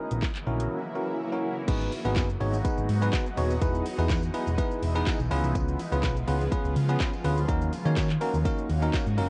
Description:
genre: dance-pop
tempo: 124 BPM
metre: 4/4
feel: straight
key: G# minor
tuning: A4 = 440 Hz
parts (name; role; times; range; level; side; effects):
- bell-like tine electric piano; accompaniment; 0.0-9.3 s; A#3 to C#5; -33 LUFS; equal; subtle chorus, cassette tape
- shimmering ambient pad; sustained chords; 0.0-9.3 s; C#3 to F#4; -37 LUFS; equal; chorus, built-in reverb, phaser, sidechain pumping, cassette tape
- hollow-body short-scale picked electric bass; bass; 0.1-9.3 s; D#1 to D#3; -30 LUFS; equal; sidechain pumping
- house drum kit; drums; 0.1-9.3 s; crash cymbal, handclaps, hi-hat, kick drum, shaker, snare drum; -32 LUFS; equal; none
- tambourine; percussion; 1.7-9.3 s; none; -54 LUFS; equal; none
room: light reverb, digital ambience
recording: home recording on cassette, nothing above 10.3 kHz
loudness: -27 LUFS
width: mono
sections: 0.0-1.7 A section; 1.7-9.3 B section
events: none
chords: 0.0 F#7/A#; 1.7 G#m7; 3.6 Emaj7; 5.3 C#7; 7.5 D#m7

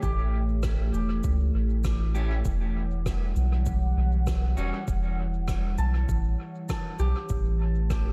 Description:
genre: ambient dub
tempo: 99 BPM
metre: 4/4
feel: swing 54% on 16ths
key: E dorian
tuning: A4 = 442 Hz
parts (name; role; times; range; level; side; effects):
- warbly tape-like pad; sustained chords; 0.0-8.1 s; E3 to F#5; -37 LUFS; equal; chorus, built-in reverb
- concert harp; arpeggios; 0.0-8.1 s; G4 to A5; -42 LUFS; equal; diffuse ambient delay
- soft dub sub bass; bass; 0.0-8.1 s; E1 to C#2; -28 LUFS; equal; none
- cabasa and rim click; drums; 0.0-8.0 s; none; -44 LUFS; equal; small room ambience, dub echo
- electronic kick drum; drums; 0.0-8.0 s; none; -33 LUFS; equal; small room ambience
- electric guitar at the edge of break-up; stabs; 2.1-4.8 s; G3 to G4; -42 LUFS; equal; analog chorus, low-pass filter, dub echo
room: studio ambience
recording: none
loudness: -27 LUFS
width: mono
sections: 0.0-8.1 A section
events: filter sweep on clean electric guitar 0.0-8.1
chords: 0.0 A7; 2.5 Em69; 7.3 A7

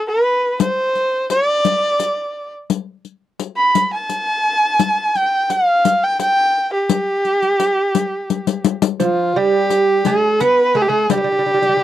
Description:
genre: Persian modal ensemble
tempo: 57 BPM (dotted quarters)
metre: 6/8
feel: straight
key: G dastgah homayun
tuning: A4 = 441 Hz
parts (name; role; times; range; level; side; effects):
- rich kamancheh; melody; 0.0-11.8 s; F4 to B5; -15 LUFS; equal; none
- riq; percussion; 0.6-11.7 s; none; -20 LUFS; left 10 dB; none
- lute; second line; 9.0-11.8 s; F3 to B3; -19 LUFS; right 6 dB; none
room: little or no reverb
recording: dry, close 1970s-style studio recording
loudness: -15 LUFS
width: side -12 dB against mid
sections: 0.0-9.0 A section; 9.0-11.8 B section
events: drum fill 8.3-9.0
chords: none

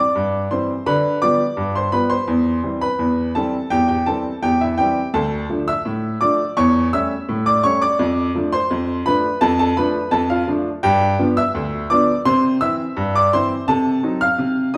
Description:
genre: ragtime piano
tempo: 84 BPM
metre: 2/4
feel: straight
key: C major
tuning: A4 = 440 Hz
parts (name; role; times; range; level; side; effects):
- clear upright piano; solo; 0.0-14.8 s; D2 to F6; -19 LUFS; equal; none
room: wet large studio reverb, RT60 1.2 s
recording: band playing live in one room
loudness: -19 LUFS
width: mono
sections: 0.0-14.8 A section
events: none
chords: 0.0 C; 0.9 G7/D; 2.3 C/E; 5.1 Dm; 6.6 A7/E; 8.0 Dm/F; 10.8 G7; 12.3 C; 13.7 Cdim7

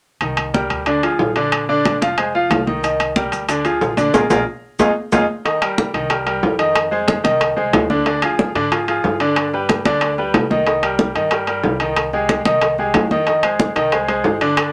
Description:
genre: latin, salsa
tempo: 184 BPM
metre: 4/4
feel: straight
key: C minor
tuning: A4 = 440 Hz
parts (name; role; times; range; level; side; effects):
- bright baby grand piano; accompaniment; 0.2-14.7 s; D3 to F5; -20 LUFS; equal; none
- upright bass; bass; 0.2-14.7 s; F1 to Ab2; -34 LUFS; equal; none
- congas; percussion; 0.2-14.7 s; none; -24 LUFS; equal; none
- timbales; percussion; 0.2-14.7 s; none; -23 LUFS; equal; none
- maracas; percussion; 2.8-5.2 s; none; -38 LUFS; equal; none
- bongos; percussion; 5.5-14.7 s; none; -28 LUFS; equal; none
room: wet small room ambience, RT60 0.5 s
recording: none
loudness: -18 LUFS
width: mono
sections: 0.2-5.5 A section; 5.5-14.7 B section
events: band accent 4.1-5.5; drum fill 4.8-5.5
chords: 0.2 Cm9; 0.9 Ddim; 1.5 Bb; 2.2 Fm7; 2.8 Cm9; 3.5 Ddim; 4.1 Bb5; 4.8 Fm7; 5.5 Cm7; 6.8 Fm7; 8.1 Ddim; 9.4 G; 10.7 Cm7; 12.0 Abmaj7/C; 13.3 Fm7

